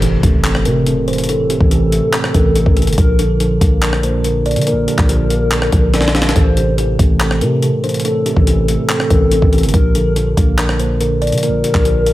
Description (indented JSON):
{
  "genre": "hip hop, trap",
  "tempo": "142 BPM",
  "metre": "4/4",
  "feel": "half-time",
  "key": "A phrygian",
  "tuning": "A4 = 440 Hz",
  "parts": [
    { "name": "kalimba", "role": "melody", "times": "0.0-12.1 s", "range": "G4 to D5", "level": "-20 LUFS", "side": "equal", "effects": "none" },
    { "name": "tine electric piano", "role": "accompaniment", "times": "0.0-12.1 s", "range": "A2 to D4", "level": "-19 LUFS", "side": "right 1 dB", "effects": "medium stereo tremolo" },
    { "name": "growling 808-style bass", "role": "bass", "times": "0.0-12.1 s", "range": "G1 to D3", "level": "-16 LUFS", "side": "equal", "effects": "none" },
    { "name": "breakbeat sampler-style drum kit", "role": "drums", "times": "0.0-12.1 s", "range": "handclaps, hi-hat, kick drum, rim click, snare drum", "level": "-15 LUFS", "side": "equal", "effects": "none" },
    { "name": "impact", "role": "sound effects", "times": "0.0-1.3 s", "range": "none", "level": "-24 LUFS", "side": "equal", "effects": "none" },
    { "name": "hollow clarinet-like synth lead", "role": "second line", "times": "1.3-12.1 s", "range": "A4 to F5", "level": "-21 LUFS", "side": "left 2 dB", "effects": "chorus, diffuse ambient delay" }
  ],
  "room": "light reverb",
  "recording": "none",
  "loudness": "-12 LUFS",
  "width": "side -16 dB against mid",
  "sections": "0.0-12.1 A section",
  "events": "impact 0.0-1.3; drum fill 5.9-6.4",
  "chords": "0.0 Am; 3.0 Bb; 6.4 Am; 9.7 Bb"
}